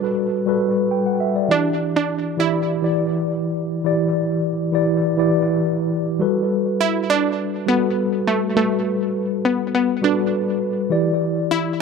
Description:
afrobeats; 102 BPM; 4/4; straight; A4 = 440 Hz
analog pluck; melody; 0.0-11.8 s; A3 to E4; -21 LUFS; right 2 dB; chorus, tape echo
mellow tine electric piano; accompaniment; 0.0-11.8 s; E3 to G5; -19 LUFS; left 1 dB; medium stereo tremolo, tape echo
moderate spring reverb, RT60 2.1 s; echo-heavy mix; -18 LUFS; side -5 dB against mid
0.0-6.2 A section; 6.2-11.8 B section
0.0 Gmaj9; 1.5 Em7; 6.2 Gmaj9; 10.9 Em7

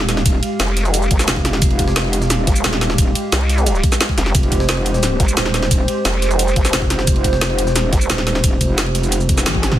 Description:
dark technical drum and bass; 176 BPM; 4/4; straight; F minor; A4 = 440 Hz
dark analog pad; sustained chords; 0.0-9.8 s; Ab3 to F5; -22 LUFS; right 2 dB; wide subtle chorus, sidechain pumping
metallic wobble bass; bass; 0.0-9.8 s; Eb1 to G1; -19 LUFS; equal; chorus, overdrive
drum and bass drum kit; drums; 0.0-9.8 s; hi-hat, shaker, snare drum, toms; -20 LUFS; equal; overdrive, small room ambience
jungle sampler-style drum kit; drums; 0.1-9.7 s; ride cymbal, snare drum; -29 LUFS; right 2 dB
electronic kick drum; drums; 0.3-9.6 s; -17 LUFS; equal; overdrive, small room ambience
vowel-sweep wobble bass; bass; 0.6-8.1 s; F1 to C2; -18 LUFS; equal; chorus
digital ambience; dense, heavily limited modern master; -14 LUFS; side -12 dB against mid
0.0-9.8 A section
drop 0.0-9.8; drum fill 9.5-9.8; band accent 9.5
0.0 Fmadd9

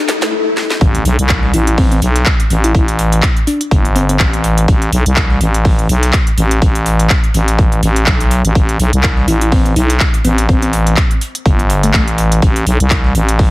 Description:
bass house; 124 BPM; 4/4; swing 56% on 16ths; A minor; A4 = 438 Hz
riser, swell and impact; sound effects; 0.0-2.7 s; -19 LUFS; left 3 dB
dusty soul sampler-style drum kit; drums; 0.1-13.5 s; hi-hat, snare drum; -28 LUFS; right 2 dB; high-pass filter on hats, high-pass filter on snare, high-pass filter on room
house drum kit; drums; 0.1-13.4 s; handclaps, hi-hat, snare drum; -18 LUFS; equal; high-pass filter on snare, high-pass filter on hats
growling FM bass; bass; 0.8-13.5 s; G1 to C2; -12 LUFS; equal; tube saturation, sidechain pumping
electronic kick drum; drums; 0.8-13.5 s; -13 LUFS; equal; high-pass filter on kick
bell-like FM electric piano; melody; 1.5-4.2, 9.3-12.0 s; A3 to E4; -19 LUFS; left 1 dB; chorus, ping-pong delay
little or no reverb; heavily compressed radio sound, multiband compression; -10 LUFS; side -18 dB against mid
0.8-13.5 A section
drum fill 0.0-0.3, 0.6; riser 0.0-0.3; swell 0.0-0.8; drop 0.8-13.5; impact 0.8-2.7
0.0 Asus2; 0.8 N.C.

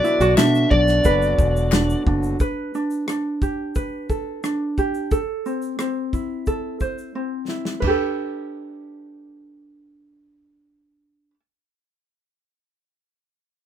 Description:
acoustic pop; 88 BPM; 4/4; straight; G major; A4 = 439 Hz
overdriven slide guitar; melody; 0.0-2.0 s; D5 to E5; -20 LUFS; left 1 dB
ukulele; accompaniment; 0.0-11.4 s; C4 to D5; -23 LUFS; right 2 dB
hand-pumped harmonium; sustained chords; 0.0-2.4 s; B2 to F#4; -28 LUFS; left 1 dB
natural country drum kit; drums; 0.0-8.0 s; china cymbal, kick drum, rim click, shaker, snare drum, toms; -22 LUFS; equal
fingered electric bass; bass; 0.2-2.3 s; E1 to B2; -21 LUFS; equal
group handclap; percussion; 0.4-1.9 s; -28 LUFS; left 5 dB
light reverb; minimal, uncompressed stereo recording; -19 LUFS; side -10 dB against mid
0.0-2.4 A section; 2.4-7.8 B section; 7.8-10.5 C section
drum fill 7.1-7.8
0.0 Bm; 2.4 Gadd9; 5.1 Am; 7.8 Gadd9

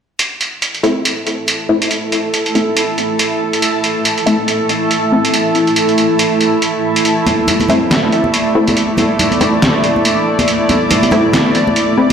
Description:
deep dubstep; 140 BPM; 4/4; swing 58% on 16ths, half-time; A minor; A4 = 440 Hz
granular cloud pad; sustained chords; 1.1-12.1 s; A3 to D5; -14 LUFS; right 1 dB; built-in reverb
trip hop sampler-style drum kit; drums; 0.2-12.1 s; hi-hat, snare drum; -17 LUFS; right 1 dB; overdrive
filtered dub chord stab; stabs; 0.8-12.1 s; A3 to E4; -17 LUFS; left 2 dB; chorus, dub echo
congas; percussion; 7.3-12.1 s; -17 LUFS; equal; dub echo
moderate lush hall reverb, RT60 2.2 s; played on a big sound system in a bare room, large studio reverb; -11 LUFS; side -7 dB against mid
0.2-12.1 A section
filter sweep on synth stab 0.2-12.1
0.2 Am

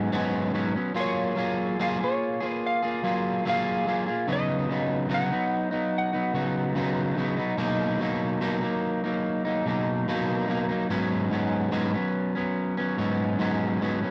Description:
indie pop; 72 BPM; 4/4; straight; F# major; A4 = 441 Hz
electric guitar at the edge of break-up; accompaniment; 0.0-14.1 s; G#2 to G#4; -27 LUFS; equal; subtle chorus, warbly pitch drift
clean lap steel guitar; melody; 1.0-7.2 s; C#5 to F#5; -32 LUFS; equal; analog chorus
little or no reverb; dry, gritty hardware recording, cassette tape; -27 LUFS; mono
0.0-14.1 A section
0.0 G#m7; 1.0 F#maj9; 4.3 C#9sus4; 7.6 Bmaj7; 10.9 G#m7

